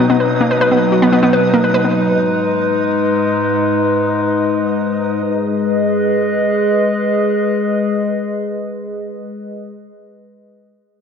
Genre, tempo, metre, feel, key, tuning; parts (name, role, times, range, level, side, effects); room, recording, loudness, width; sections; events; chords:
IDM; free time; G# minor; A4 = 441 Hz
warbly tape-like pad; sustained chords; 0.0-9.3 s; G#2 to D#5; -15 LUFS; left 1 dB; chorus, built-in reverb
warbly dusty pluck; arpeggios; 0.0-1.9 s; A#3 to B4; -15 LUFS; left 1 dB; chorus, diffuse ambient delay
flickering grainy texture; texture; 0.0-5.2 s; D#5; -28 LUFS; right 2 dB; built-in reverb
wet plate reverb, RT60 3.5 s; dreamy mix soaked in reverb; -13 LUFS; side -6 dB against mid
0.0-5.2 A section; 5.2-8.5 B section
0.0 B; 1.9 G#m